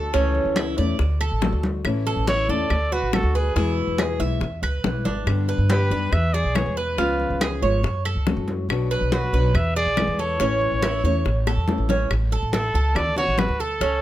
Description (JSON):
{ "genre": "latin, Cuban son and guajira", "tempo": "140 BPM", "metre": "4/4", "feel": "straight", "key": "A major", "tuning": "A4 = 440 Hz", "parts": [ { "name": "warm trumpet", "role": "melody", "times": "0.0-14.0 s", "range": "G#4 to E5", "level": "-25 LUFS", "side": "equal", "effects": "none" }, { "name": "flamenco guitar", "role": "accompaniment", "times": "0.0-12.1 s", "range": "B2 to G4", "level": "-27 LUFS", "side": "left 5 dB", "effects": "none" }, { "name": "Cuban tres", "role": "arpeggios", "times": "0.0-14.0 s", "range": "C#4 to E5", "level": "-27 LUFS", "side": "right 5 dB", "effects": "none" }, { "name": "upright bass", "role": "bass", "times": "0.0-14.0 s", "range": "G#1 to G2", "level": "-23 LUFS", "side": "equal", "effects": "none" }, { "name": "bongos", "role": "percussion", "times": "0.1-14.0 s", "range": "none", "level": "-30 LUFS", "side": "left 8 dB", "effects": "none" }, { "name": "congas", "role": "percussion", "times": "0.1-14.0 s", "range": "none", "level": "-28 LUFS", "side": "equal", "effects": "none" }, { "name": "claves", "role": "percussion", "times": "0.6-13.6 s", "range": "none", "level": "-32 LUFS", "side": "right 1 dB", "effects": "none" } ], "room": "little or no reverb", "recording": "close, detailed microphones", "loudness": "-20 LUFS", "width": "side -13 dB against mid", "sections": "0.0-12.1 A section; 12.1-14.0 A section", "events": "drum fill 11.5-12.1", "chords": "0.1 A/C#; 1.0 D; 1.8 A; 2.7 D; 3.6 E; 5.3 G; 6.1 E; 7.0 C#7; 7.8 F#m; 8.7 Bm; 9.5 E; 10.4 A; 13.0 D" }